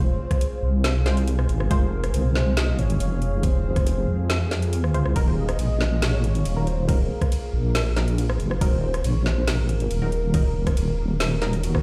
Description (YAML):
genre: deep dubstep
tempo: 139 BPM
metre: 4/4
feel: half-time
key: unclear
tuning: A4 = 440 Hz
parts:
  - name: breathy flute-like synth lead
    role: melody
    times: 0.0-11.8 s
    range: Gb4 to Eb5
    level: -35 LUFS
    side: equal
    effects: ensemble chorus, dub echo
  - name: deep dark ambient pad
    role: sustained chords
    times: 0.1-11.8 s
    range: Ab4 to F5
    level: -39 LUFS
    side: equal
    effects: chorus, built-in reverb
  - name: filtered dub chord stab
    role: stabs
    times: 0.0-1.9, 4.9-11.5 s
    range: Gb3 to C5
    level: -36 LUFS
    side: equal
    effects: chorus, dub echo
  - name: deep soft wobble bass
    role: bass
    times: 0.0-11.8 s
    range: Eb1 to F2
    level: -24 LUFS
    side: equal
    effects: chorus, tube saturation
  - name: electronic kick drum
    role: drums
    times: 0.3-11.8 s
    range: none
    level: -24 LUFS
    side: equal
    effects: overdrive
  - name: garage drum kit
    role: drums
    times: 0.3-11.8 s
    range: hi-hat, ride cymbal, rim click, snare drum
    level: -32 LUFS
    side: equal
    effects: overdrive
room: light reverb, digital ambience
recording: played on a big sound system in a bare room, large studio reverb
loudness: -23 LUFS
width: mono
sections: 0.0-11.8 A section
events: none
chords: 0.0 Fm; 5.2 Ebm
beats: 0.41 0.84 1.27 | 1.71 2.14 2.57 3.00 | 3.43 3.86 4.30 4.73 | 5.16 5.59 6.02 6.45 | 6.89 7.32 7.75 8.18 | 8.61 9.04 9.48 9.91 | 10.34 10.77 11.20 11.63